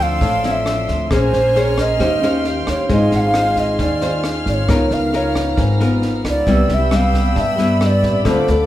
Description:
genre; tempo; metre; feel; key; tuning
bossa nova; 134 BPM; 4/4; straight; unclear; A4 = 439 Hz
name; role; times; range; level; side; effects
bright alto ocarina; melody; 0.0-8.7 s; A4 to F#5; -20 LUFS; right 1 dB; none
nylon-string guitar; accompaniment; 0.0-8.7 s; G2 to C5; -19 LUFS; left 2 dB; none
vibraphone with soft mallets; accompaniment; 0.0-8.7 s; C4 to E6; -24 LUFS; right 2 dB; none
warm chamber string section; sustained chords; 0.0-8.7 s; Cb4 to F6; -26 LUFS; left 2 dB; none
upright bass; bass; 0.0-8.7 s; Ab1 to G2; -20 LUFS; equal; none
compact cocktail drum kit; drums; 0.2-8.5 s; kick drum, rim click, snare drum; -25 LUFS; equal; none
room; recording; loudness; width
moderate recital hall reverb, RT60 1.6 s; recorded in a church or concert hall; -14 LUFS; side -13 dB against mid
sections
0.0-8.7 A section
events
none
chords
0.0 Dm9; 1.1 Bbm9; 2.0 Eb13; 2.9 Ab6; 4.7 Db13; 6.5 Cmaj7

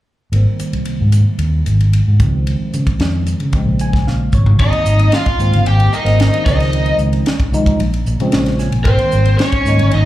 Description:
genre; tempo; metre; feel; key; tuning
electric jazz fusion; 113 BPM; 4/4; straight; Ab major; A4 = 439 Hz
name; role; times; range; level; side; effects
bell-like tine electric piano; accompaniment; 0.3-10.1 s; Db3 to Ab5; -20 LUFS; right 1 dB; medium stereo tremolo, phaser, slapback echo
fingered electric bass; bass; 0.3-10.1 s; Ab1 to Db3; -14 LUFS; equal; none
crisp fusion drum kit; drums; 0.3-10.0 s; crash cymbal, hi-hat, kick drum, ride cymbal, snare drum, toms; -18 LUFS; equal; none
lead guitar through a small cranked amp; melody; 4.6-10.0 s; C5 to G5; -19 LUFS; left 2 dB; overdrive, slapback echo
crunchy overdriven guitar; second line; 4.6-10.0 s; C4 to G4; -20 LUFS; right 1 dB; slapback echo
room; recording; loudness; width
small room reverb; live gig heard through the venue's PA, club reverb; -12 LUFS; side -14 dB against mid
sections
0.3-4.6 A section; 4.6-10.1 B section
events
tine electric piano fill 3.5-4.6, 8.1-8.9; drum fill 4.1-4.6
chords
0.3 Abmaj7; 2.2 Dbmaj9; 3.5 Bbm9; 4.6 Abmaj7; 6.5 Dbmaj9; 7.8 Bbm9; 8.9 Abmaj7

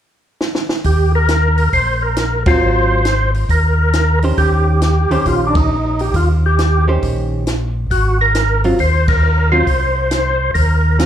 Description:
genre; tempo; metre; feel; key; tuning
soul jazz organ trio; 136 BPM; 4/4; swing 66% on 8ths; Eb mixolydian; A4 = 441 Hz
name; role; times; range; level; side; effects
compact cocktail drum kit; drums; 0.4-11.1 s; hi-hat, kick drum, ride cymbal, snare drum; -21 LUFS; equal; none
mellow tonewheel organ; bass; 0.8-11.1 s; Ab1 to Eb2; -15 LUFS; equal; slow rotary speaker
percussive tonewheel organ; melody; 0.9-11.1 s; D4 to C5; -17 LUFS; equal; overdrive, chorus vibrato, slow rotary speaker, plate reverb, slapback echo
hollow-body jazz guitar; accompaniment; 2.5-11.1 s; Eb3 to C5; -20 LUFS; right 2 dB; plate reverb
room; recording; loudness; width
light reverb; live gig heard through the venue's PA, club reverb; -12 LUFS; side -10 dB against mid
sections
0.8-11.1 A section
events
drum fill 0.4-0.8; band accent 2.4, 5.5, 9.0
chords
0.0 N.C.; 0.8 Eb5; 2.6 Ab13; 4.4 Eb6; 7.9 Abadd9

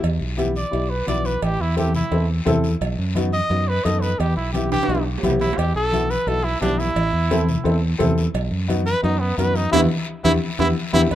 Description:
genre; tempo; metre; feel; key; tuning
latin, cumbia; 173 BPM; 4/4; straight; E harmonic minor; A4 = 440 Hz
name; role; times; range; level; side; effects
fingered electric bass; bass; 0.0-11.2 s; A1 to F#2; -22 LUFS; right 1 dB; none
congas; percussion; 0.0-11.2 s; none; -28 LUFS; left 2 dB; none
cowbell and timbales; percussion; 0.0-11.2 s; none; -28 LUFS; right 3 dB; none
guiro; percussion; 0.0-11.2 s; none; -36 LUFS; left 5 dB; none
dark upright piano; accompaniment; 0.4-11.0 s; B3 to A4; -24 LUFS; left 2 dB; none
warm trumpet; melody; 0.6-11.2 s; B3 to D#5; -23 LUFS; right 1 dB; none
room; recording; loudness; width
light reverb; minimal, uncompressed stereo recording; -18 LUFS; side -12 dB against mid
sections
0.0-11.1 A section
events
trumpet solo 0.0-11.1; drum fill 4.7-5.6, 9.7-11.1; band accent 9.7-11.1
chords
0.0 Em; 1.4 Am; 2.8 B7; 4.2 Em; 7.0 Am; 8.3 B; 9.7 Em

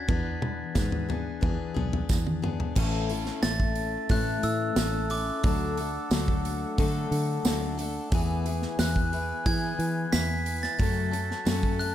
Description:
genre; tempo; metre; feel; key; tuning
indie folk with a building arrangement; 90 BPM; 4/4; straight; A major; A4 = 440 Hz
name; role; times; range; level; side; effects
glockenspiel with hard plastic mallets; melody; 0.0-11.9 s; D6 to B6; -34 LUFS; right 1 dB; tape echo
picked steel-string acoustic guitar; accompaniment; 0.0-11.9 s; F#2 to A4; -32 LUFS; left 7 dB; none
fingered electric bass; bass; 0.1-11.9 s; A1 to E3; -30 LUFS; right 1 dB; none
natural country drum kit; drums; 0.1-11.9 s; crash cymbal, hi-hat, kick drum, snare drum, toms; -28 LUFS; equal; none
tambourine; percussion; 0.8-11.6 s; none; -40 LUFS; right 17 dB; none
dark brass ensemble; sustained chords; 2.8-11.9 s; C#4 to A5; -37 LUFS; right 3 dB; none
room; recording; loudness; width
small room reverb; none; -25 LUFS; side -11 dB against mid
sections
0.0-2.8 A section; 2.8-11.9 B section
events
drum fill 2.1-2.8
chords
0.1 E7; 2.8 A; 5.4 D; 8.1 E; 10.8 F#m

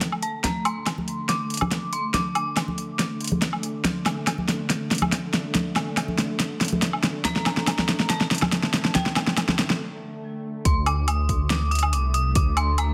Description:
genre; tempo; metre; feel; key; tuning
deep dubstep; 141 BPM; 4/4; half-time; unclear; A4 = 439 Hz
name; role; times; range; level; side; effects
bowed-like drone; sustained chords; 0.0-12.9 s; D3 to A3; -36 LUFS; equal; built-in reverb
deep house drum kit; drums; 0.0-12.9 s; hi-hat, snare drum, woodblock; -26 LUFS; equal; none
electronic kick drum; drums; 0.0-12.4 s; none; -28 LUFS; equal; high-pass filter on kick
dark detuned synth bell; melody; 0.2-3.2, 7.3-12.9 s; G5 to Eb6; -32 LUFS; equal; chorus, tremolo, vintage 12-bit sampler grit, low-pass filter, dub echo
congas; percussion; 0.4-9.6 s; none; -32 LUFS; equal; none
dark detuned saw bass; bass; 10.7-12.9 s; C2 to D2; -25 LUFS; equal; none
room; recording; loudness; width
moderate echo chamber reverb, RT60 1.4 s; none; -24 LUFS; mono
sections
0.0-10.7 A section; 10.7-12.9 B section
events
build-up 0.0-10.7; drum fill 0.0-9.8; filter sweep on synth drone 0.0-10.7; break 9.8-10.7; drop 10.7-12.9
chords
0.0 D5

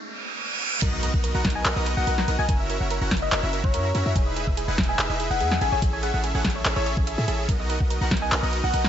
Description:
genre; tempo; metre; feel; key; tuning
future bass; 144 BPM; 4/4; half-time; B major; A4 = 441 Hz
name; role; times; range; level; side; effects
ethereal airy pad; sustained chords; 0.0-0.8 s; G#3 to C#4; -46 LUFS; right 2 dB; ensemble chorus, built-in reverb, phaser, sidechain pumping
riser, reverse cymbal and impact; sound effects; 0.0-2.5 s; none; -29 LUFS; right 3 dB; none
soft round pluck; arpeggios; 0.8-8.9 s; G#4 to A#5; -34 LUFS; right 4 dB; chorus, sidechain pumping, tape echo
supersaw chords; riff; 0.8-8.9 s; B3 to F#5; -29 LUFS; right 1 dB; sidechain pumping
warm 808-style bass; bass; 0.8-8.9 s; E1 to A2; -26 LUFS; equal; sidechain pumping
dubstep drum kit; drums; 0.8-8.9 s; crash cymbal, handclaps, hi-hat, snare drum; -26 LUFS; equal; overdrive
electronic kick drum; drums; 0.8-8.2 s; none; -25 LUFS; equal; overdrive
soft struck synth lead; melody; 1.6-8.9 s; C#5 to G#5; -29 LUFS; left 3 dB; chorus, phaser, sidechain pumping, tape echo
room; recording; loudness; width
light reverb, digital ambience; high-pass filter, nothing above 7.8 kHz; -21 LUFS; side -10 dB against mid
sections
0.8-8.9 A section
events
break 0.0-0.8; riser 0.0-0.8; reverse cymbal 0.0-0.8; drop 0.8-8.9; impact 0.8-2.5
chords
0.0 Amaj7; 0.8 Bmaj7; 2.5 F#7; 4.2 Emaj7; 5.6 Amaj7; 7.5 Bmaj7

